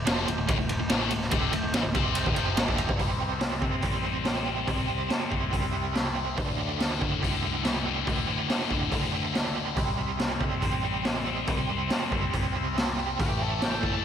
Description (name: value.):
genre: classic rock.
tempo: 141 BPM.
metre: 4/4.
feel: straight.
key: unclear.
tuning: A4 = 441 Hz.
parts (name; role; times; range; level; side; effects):
biting overdriven guitar; riff; 0.0-14.0 s; D2 to C4; -32 LUFS; right 9 dB; tremolo, slapback echo.
cranked stack guitar; riff; 0.0-14.0 s; D2 to C4; -31 LUFS; left 10 dB; overdrive, phaser.
picked electric bass; bass; 0.0-14.0 s; D1 to D3; -34 LUFS; equal; none.
raw garage drum kit; drums; 0.1-13.9 s; hi-hat, kick drum, ride cymbal, snare drum; -28 LUFS; equal; none.
octave-fuzz lead guitar; second line; 13.2-14.0 s; G4 to A5; -33 LUFS; left 1 dB; distortion, digital delay, slapback echo.
room: light reverb, studio reverb.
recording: none.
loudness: -25 LUFS.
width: side -8 dB against mid.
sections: 0.0-3.0 A section; 3.0-14.0 B section.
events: none.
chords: 0.0 Dm; 3.0 C5; 6.4 D5; 9.8 C5; 13.2 A5.